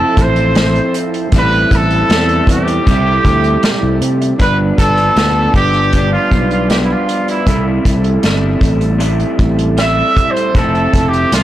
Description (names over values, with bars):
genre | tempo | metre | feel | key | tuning
indie pop, bedroom pop | 78 BPM | 4/4 | straight | C major | A4 = 440 Hz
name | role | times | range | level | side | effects
clear trumpet | melody | 0.0-11.4 s | E4 to E5 | -16 LUFS | right 1 dB | lush chorus, analog delay
electric guitar through a small old amp | accompaniment | 0.0-11.4 s | G2 to A4 | -20 LUFS | left 3 dB | wide subtle chorus, warbly pitch drift
mellow tonewheel organ | accompaniment | 0.0-11.4 s | F3 to E5 | -20 LUFS | right 4 dB | slow rotary speaker, cassette tape
sustaining fretless electric bass | bass | 0.2-11.4 s | F1 to C3 | -15 LUFS | equal | analog chorus
unplugged drum kit | drums | 0.2-11.4 s | hi-hat, kick drum, snare drum | -15 LUFS | equal | none
room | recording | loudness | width
light reverb, small room ambience | blown-out, overdriven recording, overdrive | -10 LUFS | side -13 dB against mid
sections
0.0-4.4 A section; 4.4-11.4 B section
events
trumpet solo 4.4-11.4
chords
0.0 Fmaj7; 1.3 Am7; 2.9 C6; 4.4 G7; 7.5 C6; 10.6 Fmaj7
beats
0.56 | 1.32 2.09 2.86 3.63 | 4.40 5.17 5.94 6.71 | 7.47 8.24 9.01 9.78 | 10.55 11.32